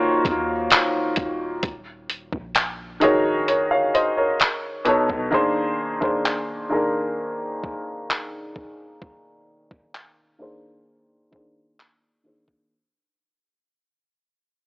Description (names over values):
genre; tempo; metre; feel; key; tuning
contemporary R&B; 65 BPM; 4/4; straight; unclear; A4 = 442 Hz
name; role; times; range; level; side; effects
clear concert grand piano; accompaniment; 0.0-12.7 s; B2 to F5; -20 LUFS; equal; low-pass filter
clean 808-style bass; bass; 0.0-5.3 s; Eb1 to Eb2; -37 LUFS; equal; none
dusty soul sampler-style drum kit; drums; 0.2-12.7 s; handclaps, hi-hat, kick drum; -21 LUFS; equal; none
room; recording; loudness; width
little or no reverb; dry, gritty hardware recording, AM radio sound; -20 LUFS; side -25 dB against mid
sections
0.0-12.7 A section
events
filter sweep on grand piano 0.0-12.7; fade-out 0.9-12.7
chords
0.0 Ebm9; 1.6 Ab9sus4/Eb; 4.4 B9; 5.3 Bb7/Eb